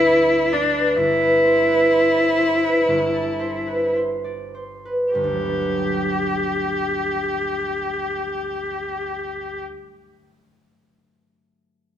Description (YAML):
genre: classical, impressionist duo for cello and harp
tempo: 49-69 BPM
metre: 4/4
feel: rubato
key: G major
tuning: A4 = 440 Hz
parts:
  - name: rich cello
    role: melody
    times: 0.0-9.6 s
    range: D4 to G4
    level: -21 LUFS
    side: left 2 dB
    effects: none
  - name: concert harp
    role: accompaniment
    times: 0.0-10.1 s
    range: G1 to E5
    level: -21 LUFS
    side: right 1 dB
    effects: none
room: moderate recital hall reverb, RT60 1.5 s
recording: close, detailed microphones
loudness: -18 LUFS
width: side -10 dB against mid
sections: 0.0-5.1 A section; 5.1-9.8 B section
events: slowing down 0.0-5.1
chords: 0.0 G6; 1.0 Am9/G; 5.1 Gmaj7